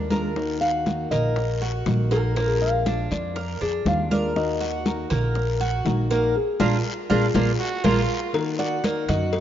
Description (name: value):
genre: latin, Cuban son and guajira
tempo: 120 BPM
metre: 4/4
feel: straight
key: Eb harmonic minor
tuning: A4 = 440 Hz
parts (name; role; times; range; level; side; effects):
- nylon-string guitar; melody; 0.0-9.4 s; Ab4 to F5; -28 LUFS; left 2 dB; none
- fingerpicked plugged-in steel-string acoustic guitar; accompaniment; 0.0-9.4 s; Eb3 to Gb4; -31 LUFS; left 4 dB; none
- Cuban tres; arpeggios; 0.0-9.4 s; Bb3 to Bb4; -27 LUFS; right 2 dB; none
- upright bass; bass; 0.0-9.4 s; Bb1 to Gb2; -26 LUFS; right 1 dB; none
- bongos and cowbell; percussion; 0.1-9.4 s; none; -31 LUFS; left 6 dB; none
- congas; percussion; 0.1-9.4 s; none; -27 LUFS; equal; none
- guiro; percussion; 0.1-9.4 s; none; -40 LUFS; left 5 dB; none
- growling trumpet; second line; 7.6-8.3 s; F4 to Gb4; -30 LUFS; right 4 dB; slapback echo
room: moderate plate reverb, RT60 3.2 s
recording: rough home demo mix, nothing above 7.5 kHz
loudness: -21 LUFS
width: side -10 dB against mid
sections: 0.0-8.3 A section; 8.3-9.4 B section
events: band accent 6.4-8.3; drum fill 8.1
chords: 0.4 Ebm; 2.4 Bb7; 4.4 Ebm; 6.4 Bb7; 8.3 Ebm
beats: | 0.36 0.86 1.36 1.86 | 2.36 2.86 3.36 3.86 | 4.36 4.86 5.36 5.86 | 6.35 6.85 7.35 7.84 | 8.34 8.84 9.34